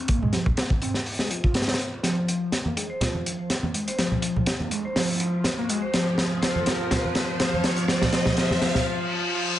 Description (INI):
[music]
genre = breakbeat, breaks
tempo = 123 BPM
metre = 4/4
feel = swing 54% on 16ths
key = F minor pentatonic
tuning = A4 = 441 Hz
[part]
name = overdriven synth lead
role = riff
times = 0.0-9.6 s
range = F3 to C4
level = -27 LUFS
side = equal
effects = tube saturation, analog chorus
[part]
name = modern bright picked electric bass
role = bass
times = 0.0-8.9 s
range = F1 to Ab1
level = -46 LUFS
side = equal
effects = none
[part]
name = crunchy breakbeat drum kit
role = drums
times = 0.1-8.8 s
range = hi-hat, kick drum, snare drum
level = -25 LUFS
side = equal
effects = none
[part]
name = congas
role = percussion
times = 0.2-8.8 s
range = none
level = -29 LUFS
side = right 1 dB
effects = none
[part]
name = riser and reverse cymbal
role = sound effects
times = 3.8-9.6 s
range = none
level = -32 LUFS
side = left 1 dB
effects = none
[part]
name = vibraphone with hard mallets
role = melody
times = 2.9-8.7 s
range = C5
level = -32 LUFS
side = equal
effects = telephone sound, digital delay
[sound]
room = moderate digital room reverb, RT60 1.0 s, small room reverb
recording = nothing above 11.0 kHz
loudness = -22 LUFS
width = side -12 dB against mid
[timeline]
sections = 0.0-9.6 A section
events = build-up 0.0-9.6; filter sweep on analog synth lead 0.0-9.6; drum fill 2.0-8.9; riser 3.8-8.9; break 8.9-9.6; reverse cymbal 8.9-9.6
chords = none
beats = | 0.08 0.57 1.06 1.55 | 2.04 2.52 3.01 3.50 | 3.99 4.47 4.96 5.45 | 5.94 6.42 6.91 7.40 | 7.89 8.38 8.86 9.35